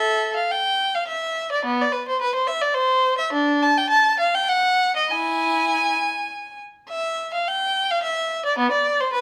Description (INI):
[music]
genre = classical, baroque-style suite movement for unaccompanied violin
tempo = 93-109 BPM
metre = 3/4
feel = rubato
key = unclear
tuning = A4 = 437 Hz
[part]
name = warm violin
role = solo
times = 0.0-9.2 s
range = B3 to A5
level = -21 LUFS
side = equal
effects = none
[sound]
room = moderate large studio reverb, RT60 1.3 s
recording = none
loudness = -21 LUFS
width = mono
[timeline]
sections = 0.0-9.2 A section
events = none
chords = none